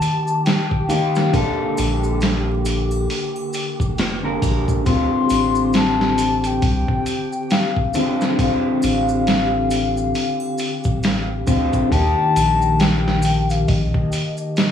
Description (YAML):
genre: trip hop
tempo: 68 BPM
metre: 4/4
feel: swing 59% on 16ths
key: D phrygian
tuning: A4 = 438 Hz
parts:
  - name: mellow baroque flute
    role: melody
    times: 0.0-14.7 s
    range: Eb5 to C6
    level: -24 LUFS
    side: left 4 dB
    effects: tape echo
  - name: electric guitar at the edge of break-up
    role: accompaniment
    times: 0.0-14.7 s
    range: D3 to Bb4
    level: -20 LUFS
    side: left 2 dB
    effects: harmonic tremolo, vintage 12-bit sampler grit, tape echo
  - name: trip hop sampler-style drum kit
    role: drums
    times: 0.0-14.7 s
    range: hi-hat, kick drum, snare drum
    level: -22 LUFS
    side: equal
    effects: none
  - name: maracas and triangle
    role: percussion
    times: 0.0-14.7 s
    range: none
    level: -38 LUFS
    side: right 1 dB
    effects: none
  - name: wind-like tuned noise texture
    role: texture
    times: 0.0-14.7 s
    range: G4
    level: -31 LUFS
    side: right 3 dB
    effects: built-in reverb
  - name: soft dub sub bass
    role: bass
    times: 1.8-13.9 s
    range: D1 to Eb2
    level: -22 LUFS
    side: equal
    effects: none
room: light reverb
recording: vinyl crackle, studio ambience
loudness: -16 LUFS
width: side -8 dB against mid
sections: 0.0-14.7 A section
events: none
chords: 0.0 Eb; 1.3 Bbmaj7; 4.9 Dm7; 11.9 Eb